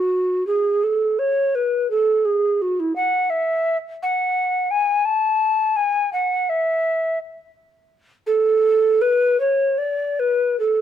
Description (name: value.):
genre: classical, baroque-style fantasia for unaccompanied recorder.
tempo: 48-59 BPM (dotted quarters).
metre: 6/8.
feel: rubato.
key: A major.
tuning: A4 = 435 Hz.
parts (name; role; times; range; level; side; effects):
mellow hollow tenor recorder; solo; 0.0-10.8 s; E4 to A5; -17 LUFS; equal; none.
room: light reverb.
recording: close, detailed microphones.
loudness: -17 LUFS.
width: side -10 dB against mid.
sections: 0.0-10.8 A section.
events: none.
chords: none.